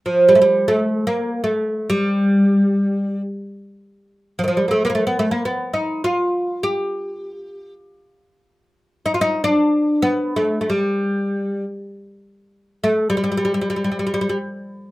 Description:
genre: Arabic maqam ensemble.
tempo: free time.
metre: none.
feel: none.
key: G maqam saba.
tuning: A4 = 445 Hz.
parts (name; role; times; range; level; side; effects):
oud; solo; 0.1-14.4 s; Eb3 to G4; -17 LUFS; equal; none.
room: wet small room reverb, RT60 0.5 s.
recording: rough home demo mix.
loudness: -17 LUFS.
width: side -18 dB against mid.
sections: 0.0-14.6 A section.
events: none.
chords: none.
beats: free time.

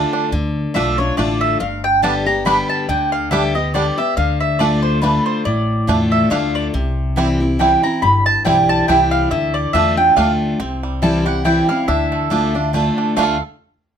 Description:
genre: bluegrass.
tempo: 140 BPM.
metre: 3/4.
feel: swing 56% on 8ths.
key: D dorian.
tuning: A4 = 440 Hz.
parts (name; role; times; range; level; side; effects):
bluegrass banjo; melody; 0.0-13.4 s; G3 to A4; -22 LUFS; right 8 dB; none.
picked steel-string acoustic guitar; accompaniment; 0.0-13.4 s; G2 to G4; -19 LUFS; left 2 dB; none.
upright bass; bass; 0.0-13.4 s; G1 to E2; -22 LUFS; equal; none.
mandolin; melody; 0.7-13.4 s; B4 to B5; -17 LUFS; right 1 dB; none.
room: light reverb.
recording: close, detailed microphones.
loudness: -14 LUFS.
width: side -8 dB against mid.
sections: 0.3-10.6 A section; 10.6-13.2 B section.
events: none.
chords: 0.3 Dm; 1.6 G; 4.2 Dm; 6.7 C; 9.3 Dm; 10.6 C; 11.9 Dm.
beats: | 0.32 0.75 1.18 | 1.60 2.03 2.46 | 2.89 3.32 3.74 | 4.17 4.60 5.03 | 5.46 5.89 6.31 | 6.74 7.17 7.60 | 8.03 8.46 8.88 | 9.31 9.74 10.17 | 10.60 11.03 11.45 | 11.88 12.31 12.74 | 13.17.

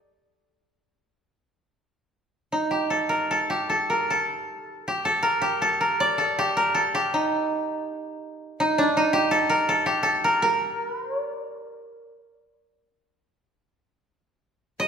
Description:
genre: japanese traditional, Japanese chamber music.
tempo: 69-84 BPM.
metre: 4/4.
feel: rubato.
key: D miyako bushi.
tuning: A4 = 438 Hz.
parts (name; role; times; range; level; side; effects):
koto; solo; 0.0-14.9 s; D4 to Eb5; -22 LUFS; equal; none.
room: wet recital hall reverb, RT60 1.8 s.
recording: recorded in a church or concert hall.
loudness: -21 LUFS.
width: side -6 dB against mid.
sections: 0.0-1.7 A section; 1.7-14.0 B section.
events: none.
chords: none.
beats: 0.07 0.91 | 1.74 2.52 3.31 4.11 | 4.89 5.64 6.39 7.12 | 7.85 8.59 9.32 10.05 | 10.80 11.56 12.34 13.16 | 13.98 14.77.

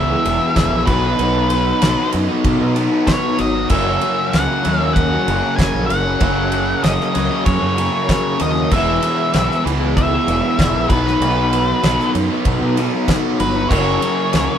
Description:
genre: classic rock.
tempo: 96 BPM.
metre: 4/4.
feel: straight.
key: F# mixolydian.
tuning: A4 = 440 Hz.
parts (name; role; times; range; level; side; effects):
octave-fuzz lead guitar; melody; 0.0-14.6 s; B4 to G#5; -20 LUFS; left 1 dB; distortion.
picked twelve-string acoustic guitar; accompaniment; 0.0-14.6 s; F#2 to G#4; -26 LUFS; equal; none.
string machine, full ensemble; sustained chords; 0.0-14.6 s; F#3 to E5; -29 LUFS; equal; none.
biting overdriven guitar; riff; 0.0-14.6 s; E2 to B3; -25 LUFS; equal; none.
overdriven semi-hollow guitar; riff; 0.0-14.6 s; F#2 to E4; -22 LUFS; left 4 dB; phaser.
tight distorted guitar; riff; 0.0-14.6 s; E2 to B3; -24 LUFS; right 6 dB; distortion.
growling fingered electric bass; bass; 0.0-14.5 s; E1 to B2; -22 LUFS; equal; overdrive.
damped 70s drum kit; drums; 0.3-14.5 s; crash cymbal, kick drum, ride cymbal, snare drum; -22 LUFS; equal; none.
room: wet studio reverb, RT60 0.6 s.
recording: band playing live in one room.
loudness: -14 LUFS.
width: side -9 dB against mid.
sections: 0.0-14.6 A section.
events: none.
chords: 0.0 E; 0.9 B; 3.7 F#; 8.7 E; 10.9 B; 13.7 F#.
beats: 0.56 | 1.19 1.82 2.45 3.07 | 3.70 4.33 4.95 5.58 | 6.21 6.83 7.46 8.08 | 8.71 9.34 9.96 10.59 | 11.21 11.84 12.46 13.09 | 13.71 14.34.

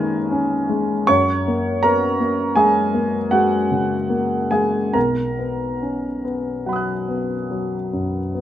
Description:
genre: classical, impressionist solo piano.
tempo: 69-83 BPM.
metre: 5/4.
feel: rubato.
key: unclear.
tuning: A4 = 444 Hz.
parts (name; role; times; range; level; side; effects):
clear grand piano; solo; 0.0-8.4 s; B1 to F#6; -18 LUFS; equal; none.
room: moderate recital hall reverb, RT60 1.6 s.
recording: close, detailed microphones.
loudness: -18 LUFS.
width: side -11 dB against mid.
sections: 0.0-8.4 A section.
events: none.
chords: 0.0 Dbsus2/Eb; 1.1 Gbadd9; 5.0 Bmaj7.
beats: 0.31 | 1.08 1.82 2.55 3.32 4.11 | 4.95 5.82 6.67 7.50 8.35.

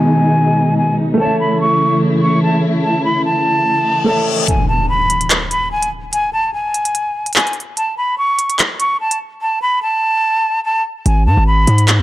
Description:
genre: hip hop, drill.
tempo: 146 BPM.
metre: 4/4.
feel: half-time.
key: unclear.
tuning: A4 = 444 Hz.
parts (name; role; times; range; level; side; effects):
jazz flute; melody; 0.0-11.9 s; G#5 to C#6; -16 LUFS; equal; low-pass filter.
clear concert grand piano; accompaniment; 0.0-4.5 s; G#3 to E5; -20 LUFS; right 1 dB; low-pass filter.
warm symphonic string section; sustained chords; 0.0-4.5 s; B2 to E4; -15 LUFS; equal; low-pass filter.
downlifter, reverse cymbal and impact; sound effects; 0.0-6.1 s; none; -22 LUFS; left 1 dB; none.
drill drum kit; drums; 4.5-12.0 s; handclaps, hi-hat; -15 LUFS; equal; none.
distorted 808-style bass; bass; 11.1-12.0 s; G#1 to G#2; -11 LUFS; equal; distortion.
room: light reverb, small room ambience.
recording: dark, warm production.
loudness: -13 LUFS.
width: side -15 dB against mid.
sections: 0.0-4.5 A section; 4.5-12.0 B section.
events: filter sweep 0.0-4.5; reverse cymbal 3.8-4.5; break 4.5-11.1; impact 4.5-6.1; drums muted 9.4-11.1.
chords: 0.0 G#m; 1.2 A; 4.5 N.C.; 11.1 G#m.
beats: 0.37 0.78 | 1.20 1.60 2.02 2.43 | 2.84 3.25 3.66 4.07 | 4.48 4.89 5.30 5.71 | 6.13 6.54 6.95 7.36 | 7.77 8.18 8.59 9.00 | 9.41 9.82 10.24 10.65 | 11.06 11.47 11.88.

